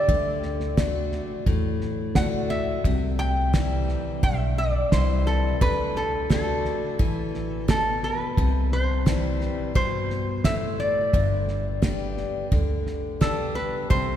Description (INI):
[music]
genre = honky-tonk and classic country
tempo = 87 BPM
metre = 4/4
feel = straight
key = G major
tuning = A4 = 439 Hz
[part]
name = lap resonator guitar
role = melody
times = 0.0-14.2 s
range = A4 to G5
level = -28 LUFS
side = equal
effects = none
[part]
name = picked steel-string acoustic guitar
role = accompaniment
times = 0.0-14.2 s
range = G2 to G4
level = -29 LUFS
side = left 4 dB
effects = none
[part]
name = upright bass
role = bass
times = 0.1-14.2 s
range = G1 to G2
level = -27 LUFS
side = equal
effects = none
[part]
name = cloth-damped thuddy drum kit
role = drums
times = 0.1-14.1 s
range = hi-hat, kick drum, snare drum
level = -27 LUFS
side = right 1 dB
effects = none
[sound]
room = wet cathedral reverb, RT60 4.5 s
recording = recorded in a church or concert hall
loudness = -22 LUFS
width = side -10 dB against mid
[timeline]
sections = 0.0-14.2 A section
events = none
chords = 0.1 D; 2.8 C; 5.6 D; 8.4 C; 11.1 G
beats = | 0.09 0.78 1.47 2.16 | 2.85 3.54 4.23 4.92 | 5.61 6.30 6.99 7.68 | 8.38 9.07 9.76 10.45 | 11.14 11.83 12.52 13.21 | 13.91